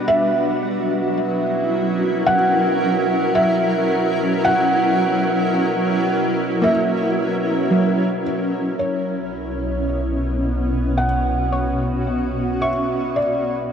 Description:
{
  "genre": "ambient",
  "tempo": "55 BPM",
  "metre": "4/4",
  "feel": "straight",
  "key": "unclear",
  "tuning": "A4 = 440 Hz",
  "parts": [
    { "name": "granular cloud pad", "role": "sustained chords", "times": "0.0-13.7 s", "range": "B2 to A#4", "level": "-20 LUFS", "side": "equal", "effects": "built-in reverb" },
    { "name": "soft round pluck", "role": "arpeggios", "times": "0.0-13.7 s", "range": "F#3 to C#6", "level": "-26 LUFS", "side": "right 1 dB", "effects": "chorus, ping-pong delay" },
    { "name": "hand-pumped harmonium", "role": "drone", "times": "0.0-13.7 s", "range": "B2", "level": "-30 LUFS", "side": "left 1 dB", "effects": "none" },
    { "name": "felt-muted upright piano", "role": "melody", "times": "0.1-13.7 s", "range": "C#5 to F#5", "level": "-22 LUFS", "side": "right 1 dB", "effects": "ping-pong delay" },
    { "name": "deep rumbling drone", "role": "bass", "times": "9.4-13.7 s", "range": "B1", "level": "-25 LUFS", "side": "equal", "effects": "built-in reverb" },
    { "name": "glass harmonica", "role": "texture", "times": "8.8-13.7 s", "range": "B4 to B5", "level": "-46 LUFS", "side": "left 1 dB", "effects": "none" }
  ],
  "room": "wet huge ambient reverb, RT60 7.6 s",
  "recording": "worn, warbling old tape, cassette tape, warbly pitch drift",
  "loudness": "-17 LUFS",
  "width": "side -7 dB against mid",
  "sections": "0.0-8.8 A section; 8.8-13.7 B section",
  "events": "none",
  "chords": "0.1 F#7; 8.8 F#sus4/B; 13.2 Em7/B (rootless)"
}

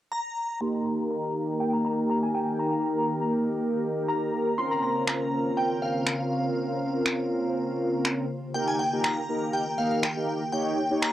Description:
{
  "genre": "dance-pop",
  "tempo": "121 BPM",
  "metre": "4/4",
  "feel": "straight",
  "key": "unclear",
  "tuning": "A4 = 441 Hz",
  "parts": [
    { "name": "shimmering bell with halo", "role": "melody", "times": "0.1-11.1 s", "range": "F5 to C6", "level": "-30 LUFS", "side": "equal", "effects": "ensemble chorus, low-pass filter, plate reverb" },
    { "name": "mellow synth brass", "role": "accompaniment", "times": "0.6-11.1 s", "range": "Bb3 to Db5", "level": "-27 LUFS", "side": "equal", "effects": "chorus, low-pass filter, cassette tape" },
    { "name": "glassy FM pad", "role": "sustained chords", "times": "0.6-11.1 s", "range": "Db3 to C5", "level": "-34 LUFS", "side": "equal", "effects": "ensemble chorus, built-in reverb, low-pass filter, cassette tape" },
    { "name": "electronic finger snaps", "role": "drums", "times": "5.1-11.1 s", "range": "none", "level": "-27 LUFS", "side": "equal", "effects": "cassette tape" }
  ],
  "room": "moderate booth ambience, RT60 0.2 s",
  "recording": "home recording on cassette",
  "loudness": "-25 LUFS",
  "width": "side -13 dB against mid",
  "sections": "0.6-8.5 A section; 8.5-11.1 B section",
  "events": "filter sweep 0.6-8.5",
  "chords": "0.0 N.C.; 0.6 Eb; 4.6 Bbmadd9; 8.3 Eb"
}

